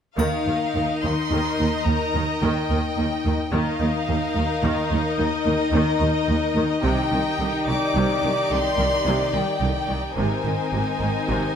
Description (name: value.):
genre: cinematic, epic orchestral film score.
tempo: 72 BPM (dotted quarters).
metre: 12/8.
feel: straight.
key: unclear.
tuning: A4 = 439 Hz.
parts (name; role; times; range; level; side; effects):
clear chamber violin section; melody; 0.2-11.6 s; Eb5 to D6; -28 LUFS; left 2 dB; none.
rich studio violin section; second line; 0.2-11.6 s; G4 to Eb5; -29 LUFS; left 3 dB; none.
rich symphonic viola section; accompaniment; 0.2-11.6 s; C3 to Eb4; -27 LUFS; equal; none.
mellow French horn section; sustained chords; 0.2-11.6 s; Eb3 to D5; -27 LUFS; left 4 dB; none.
clear symphonic double bass section; bass; 0.2-11.4 s; Ab1 to Eb2; -27 LUFS; right 3 dB; none.
rich symphonic cello section; bass; 0.2-11.4 s; C2 to Ab2; -27 LUFS; right 2 dB; none.
triangle; percussion; 0.2-1.3 s; none; -42 LUFS; left 3 dB; none.
room: moderate scoring stage reverb, RT60 1.6 s.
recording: none.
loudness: -20 LUFS.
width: side -8 dB against mid.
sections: 0.2-11.6 A section.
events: none.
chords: 0.2 Ebsus2; 6.8 Cmadd9; 10.2 Abadd9.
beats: | 0.18 1.03 1.87 2.70 | 3.53 4.36 5.19 6.01 | 6.84 7.68 8.51 9.34 | 10.17 11.01.